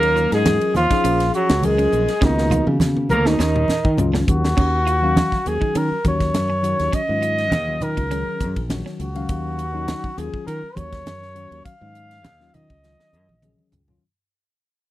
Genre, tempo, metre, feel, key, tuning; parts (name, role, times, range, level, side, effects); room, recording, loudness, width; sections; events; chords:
electric jazz fusion; 102 BPM; 4/4; swing 54% on 16ths; Eb minor; A4 = 443 Hz
dark trumpet; melody; 0.0-13.7 s; Eb4 to F5; -22 LUFS; equal; slapback echo
breathy tenor saxophone; second line; 0.0-4.1 s; Eb3 to Bb3; -25 LUFS; right 5 dB
tine electric piano; accompaniment; 0.0-14.0 s; Eb3 to F5; -27 LUFS; left 5 dB; wide subtle chorus
clean electric guitar; stabs; 0.0-9.1 s; Db4 to F4; -28 LUFS; right 5 dB; analog chorus
fingered electric bass; bass; 0.0-14.0 s; Bb1 to Eb3; -23 LUFS; equal
crisp fusion drum kit; drums; 0.0-14.0 s; crash cymbal, hi-hat, kick drum, ride cymbal, snare drum, toms; -24 LUFS; equal
congas; percussion; 0.2-14.0 s; -25 LUFS; right 2 dB
little or no reverb; dry, close 1970s-style studio recording; -17 LUFS; side -15 dB against mid
0.0-4.6 A section; 4.6-14.0 B section
drum fill 2.2-4.6, 12.8-14.0; fade-out 4.6-14.0
0.0 Ebm11; 2.2 Db13sus4; 3.4 Ebm9